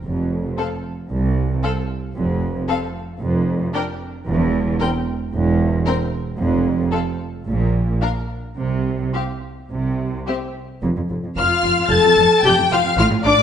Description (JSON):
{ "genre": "quick classical-period movement for string orchestra", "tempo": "113 BPM", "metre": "4/4", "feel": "rubato", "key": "F major", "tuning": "A4 = 438 Hz", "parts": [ { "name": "rich studio cello section", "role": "bass", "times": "0.0-13.4 s", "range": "C2 to C3", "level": "-23 LUFS", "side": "right 3 dB", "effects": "none" }, { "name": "rich studio double bass section", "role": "bass", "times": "0.0-13.3 s", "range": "E1 to C2", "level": "-23 LUFS", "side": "right 2 dB", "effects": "none" }, { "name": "rich studio violin section", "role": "melody", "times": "0.6-13.4 s", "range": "E5 to A6", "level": "-21 LUFS", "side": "left 4 dB", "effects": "none" }, { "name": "rich studio violin section", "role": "second line", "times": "0.6-13.4 s", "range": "G4 to A5", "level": "-22 LUFS", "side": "left 6 dB", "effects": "none" }, { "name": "warm studio viola section", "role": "accompaniment", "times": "0.6-13.3 s", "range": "C4 to A4", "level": "-20 LUFS", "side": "left 2 dB", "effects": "none" } ], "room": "wet scoring stage reverb, RT60 1.5 s", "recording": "nothing above 10.3 kHz", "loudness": "-17 LUFS", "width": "side -8 dB against mid", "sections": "0.0-10.8 A section; 10.8-13.4 B section", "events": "none", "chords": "0.0 F5; 3.2 N.C.; 10.8 F" }